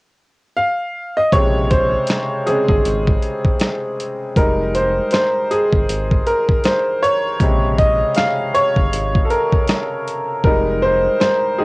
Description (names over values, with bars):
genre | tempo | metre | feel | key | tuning
lo-fi hip hop | 79 BPM | 4/4 | swing 59% on 16ths | Bb dorian | A4 = 440 Hz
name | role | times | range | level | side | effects
bright upright piano | accompaniment | 0.6-11.6 s | C3 to F5 | -16 LUFS | equal | cassette tape
round analog bass | bass | 1.3-11.1 s | F1 to Bb1 | -22 LUFS | equal | none
dusty soul sampler-style drum kit | drums | 1.3-11.4 s | hi-hat, kick drum, snare drum | -17 LUFS | equal | none
room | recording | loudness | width
light reverb | home recording on cassette | -15 LUFS | side -24 dB against mid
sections
0.0-1.3 A section; 1.3-11.6 B section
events
upright piano solo 1.3-11.6; hi-hats muted 10.4-11.6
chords
0.0 N.C.; 1.3 Bbm9; 4.4 Fm9; 7.4 Bbm9; 10.4 Fm9